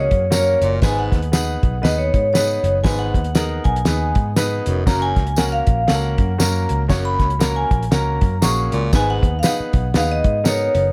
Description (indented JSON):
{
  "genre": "uptempo 1960s-style soul",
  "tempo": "118 BPM",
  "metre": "4/4",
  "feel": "swing 59% on 8ths",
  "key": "unclear",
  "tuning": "A4 = 440 Hz",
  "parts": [
    { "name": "vibraphone with medium hard mallets", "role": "melody", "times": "0.0-10.8 s", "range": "C#5 to C#6", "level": "-24 LUFS", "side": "equal", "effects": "none" },
    { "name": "clear baby grand piano", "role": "accompaniment", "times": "0.0-10.9 s", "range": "A#3 to C#5", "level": "-28 LUFS", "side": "equal", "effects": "none" },
    { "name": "vintage muted picked electric bass", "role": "bass", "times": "0.0-10.9 s", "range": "E#1 to G#2", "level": "-24 LUFS", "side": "equal", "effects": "none" },
    { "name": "cloth-damped thuddy drum kit", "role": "drums", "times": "0.1-10.8 s", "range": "hi-hat, kick drum, snare drum", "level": "-21 LUFS", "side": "equal", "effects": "none" },
    { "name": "tambourine", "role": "percussion", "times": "0.3-10.6 s", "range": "none", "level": "-32 LUFS", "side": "equal", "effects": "none" },
    { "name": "growling baritone saxophone", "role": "riff", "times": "0.6-9.3 s", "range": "F#2 to A#2", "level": "-30 LUFS", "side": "equal", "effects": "none" }
  ],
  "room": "light reverb",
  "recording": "none",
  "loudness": "-18 LUFS",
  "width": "mono",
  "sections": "0.0-10.9 A section",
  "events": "none",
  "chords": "0.0 F#; 0.8 G#m; 4.9 F#; 8.9 G#m"
}